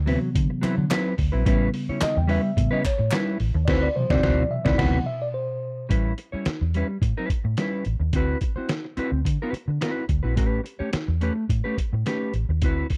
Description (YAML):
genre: funk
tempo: 108 BPM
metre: 4/4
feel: straight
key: unclear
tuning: A4 = 440 Hz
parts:
  - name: vintage muted fingered electric bass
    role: bass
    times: 0.0-12.8 s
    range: A1 to D3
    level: -26 LUFS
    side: equal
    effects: none
  - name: mellow electric guitar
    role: accompaniment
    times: 0.1-13.0 s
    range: F#3 to C#5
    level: -29 LUFS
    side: equal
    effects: subtle chorus
  - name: mellow tine electric piano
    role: stabs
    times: 0.1-5.9 s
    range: B2 to G5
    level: -28 LUFS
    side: equal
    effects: none
  - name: lo-fi sampler-style drum kit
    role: drums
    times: 0.1-13.0 s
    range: crash cymbal, handclaps, hi-hat, kick drum, snare drum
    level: -28 LUFS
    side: equal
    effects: none
  - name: group handclap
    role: percussion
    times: 0.6-3.3 s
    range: none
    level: -40 LUFS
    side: equal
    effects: none
room: digital ambience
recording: dry, close 1970s-style studio recording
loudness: -24 LUFS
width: mono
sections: 0.0-5.9 A section; 5.9-13.0 B section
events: tine electric piano solo 0.0-5.9; band accent 3.7-5.9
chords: 0.0 D13; 1.5 A9; 3.7 D13; 5.9 A9; 8.1 D13; 10.4 A9